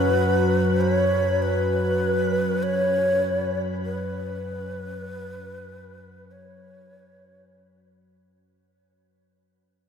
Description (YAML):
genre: ambient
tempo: free time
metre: none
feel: none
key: unclear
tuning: A4 = 440 Hz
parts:
  - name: breathy mellow long shakuhachi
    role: melody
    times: 0.0-8.2 s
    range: B4 to C#5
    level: -24 LUFS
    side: left 1 dB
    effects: diffuse ambient delay
  - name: granular cloud pad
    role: sustained chords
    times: 0.0-8.9 s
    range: C#4 to B5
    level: -35 LUFS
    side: right 2 dB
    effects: built-in reverb
  - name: bright concert grand piano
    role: arpeggios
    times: 0.0-8.8 s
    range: C#4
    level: -38 LUFS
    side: right 1 dB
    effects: none
  - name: analog drone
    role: drone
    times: 0.0-8.9 s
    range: F#2 to F#3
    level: -26 LUFS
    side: equal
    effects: chorus
room: wet cathedral reverb, RT60 5.4 s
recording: none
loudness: -21 LUFS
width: side -7 dB against mid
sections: 0.0-8.8 A section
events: fade-out on ambient pad 0.0-8.8; fade-out 0.0-8.8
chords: 0.0 F#5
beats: free time